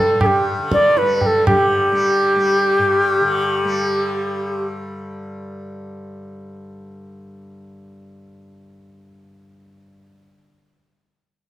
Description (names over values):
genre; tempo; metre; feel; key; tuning
indian classical, Hindustani; 120 BPM; 5/4; straight; unclear; A4 = 440 Hz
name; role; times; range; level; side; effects
bright reedy bansuri; melody; 0.0-4.7 s; G4 to D5; -16 LUFS; equal; none
tanpura; drone; 0.0-10.4 s; G2 to G3; -28 LUFS; left 1 dB; none
tabla; percussion; 0.2-1.7 s; none; -20 LUFS; right 1 dB; none
room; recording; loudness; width
moderate recital hall reverb, RT60 1.5 s; none; -15 LUFS; side -14 dB against mid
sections
0.0-1.5 A section; 1.5-4.0 B section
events
none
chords
none